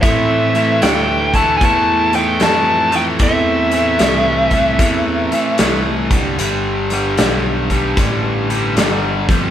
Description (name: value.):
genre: blues rock power trio and southern rock.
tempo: 76 BPM.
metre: 4/4.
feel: swing 66% on 8ths.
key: A minor.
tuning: A4 = 440 Hz.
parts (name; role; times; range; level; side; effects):
bluesy overdriven lead guitar; melody; 0.0-5.6 s; E5 to A5; -16 LUFS; left 1 dB; distortion.
lightly driven lead guitar; second line; 0.0-5.6 s; C4 to E4; -24 LUFS; right 5 dB; none.
overdriven electric guitar; riff; 0.0-9.5 s; F2 to A3; -18 LUFS; equal; none.
modern bright picked electric bass; bass; 0.0-9.5 s; G1 to A2; -22 LUFS; equal; none.
big rock drum kit; drums; 0.0-9.4 s; hi-hat, kick drum, snare drum; -18 LUFS; equal; none.
room: moderate studio reverb, RT60 0.8 s.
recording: band playing live in one room.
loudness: -13 LUFS.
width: side -10 dB against mid.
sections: 0.0-9.5 A section.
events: none.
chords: 0.0 Am; 6.0 G.